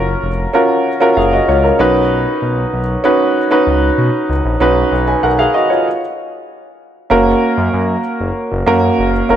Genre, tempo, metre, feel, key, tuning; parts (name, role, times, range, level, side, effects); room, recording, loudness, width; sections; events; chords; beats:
1980s-style pop; 96 BPM; 4/4; straight; A4 = 440 Hz
clear concert grand piano; accompaniment; 0.0-9.4 s; Bb3 to Ab5; -12 LUFS; right 1 dB
smooth synth bass; bass; 0.0-9.4 s; F1 to Cb3; -18 LUFS; left 1 dB
moderate lush hall reverb, RT60 2.5 s; -11 LUFS; side -10 dB against mid
0.0-7.1 A section; 7.1-9.4 B section
stop 5.9-7.1
0.0 Gbmaj7; 1.8 Cbadd9; 7.1 Gb
0.23 0.86 1.48 | 2.11 2.73 3.36 3.98 | 4.61 5.23 5.86 6.48 | 7.11 7.73 8.36 8.98